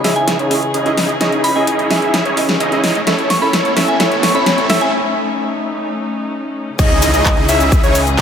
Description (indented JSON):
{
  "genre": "EDM, festival progressive house",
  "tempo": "129 BPM",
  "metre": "4/4",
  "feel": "straight",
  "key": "C# minor",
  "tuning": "A4 = 439 Hz",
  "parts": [
    { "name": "bright baby grand piano", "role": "accompaniment", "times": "0.0-4.8 s", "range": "C#4 to E5", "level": "-22 LUFS", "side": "right 3 dB", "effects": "sidechain pumping, digital delay" },
    { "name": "warm studio string section", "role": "sustained chords", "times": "0.0-8.2 s", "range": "C#3 to G#4", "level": "-23 LUFS", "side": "left 2 dB", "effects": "sidechain pumping" },
    { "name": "wide unison lead", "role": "arpeggios", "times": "0.0-8.2 s", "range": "C#5 to E5", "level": "-21 LUFS", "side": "left 1 dB", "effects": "sidechain pumping, digital delay" },
    { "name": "supersaw chords", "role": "riff", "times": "0.0-8.2 s", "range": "C#4 to E5", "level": "-20 LUFS", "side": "right 1 dB", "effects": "sidechain pumping, low-pass filter, digital delay" },
    { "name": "wide detuned saw bass", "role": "bass", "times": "0.0-8.2 s", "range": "A1 to C#2", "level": "-23 LUFS", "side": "equal", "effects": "none" },
    { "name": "big-room dance drum kit", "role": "drums", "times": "0.0-8.2 s", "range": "cabasa, crash cymbal, handclaps, hi-hat, snare drum", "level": "-19 LUFS", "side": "equal", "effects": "none" },
    { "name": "riser and impact", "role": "sound effects", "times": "1.6-8.2 s", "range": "none", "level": "-26 LUFS", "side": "left 1 dB", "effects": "none" },
    { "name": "soft synth bell", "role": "melody", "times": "0.2-4.9 s", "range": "G#5 to C#6", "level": "-21 LUFS", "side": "equal", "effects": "chorus, digital delay" },
    { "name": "electronic kick drum", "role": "drums", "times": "6.8-8.2 s", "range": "none", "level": "-14 LUFS", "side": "equal", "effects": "none" }
  ],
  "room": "moderate huge ambient reverb, RT60 3.9 s",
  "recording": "none",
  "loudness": "-12 LUFS",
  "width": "side -8 dB against mid",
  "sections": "0.0-6.8 A section; 6.8-8.2 B section",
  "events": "build-up 0.0-6.8; drum fill 0.0-4.9; filter sweep on supersaw synth 0.0-6.8; filter sweep on analog synth lead 0.0-6.8; riser 1.6-4.9; break 4.9-6.8; drop 6.8-8.2; impact 6.8-8.2",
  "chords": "0.0 C#madd9; 3.1 A; 6.8 C#madd9"
}